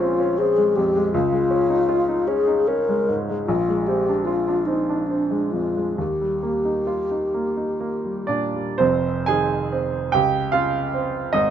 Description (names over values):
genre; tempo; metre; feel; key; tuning
classical, impressionist duo for alto flute and grand piano; 38-54 BPM (dotted quarters); 6/8; rubato; unclear; A4 = 439 Hz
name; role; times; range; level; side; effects
mellow wooden-headed alto flute; melody; 0.0-8.3 s; D4 to Bb4; -21 LUFS; left 2 dB; none
clear baby grand piano; accompaniment; 0.0-11.5 s; F1 to Ab5; -22 LUFS; right 2 dB; none
room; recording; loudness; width
light reverb; nothing above 7.6 kHz; -19 LUFS; side -9 dB against mid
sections
0.0-8.8 A section; 8.8-11.5 B section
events
none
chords
0.0 Bbm9; 1.1 Dbadd9; 3.5 Bb9; 6.0 Ebadd9; 8.8 Fm7; 10.1 Dbmaj7#11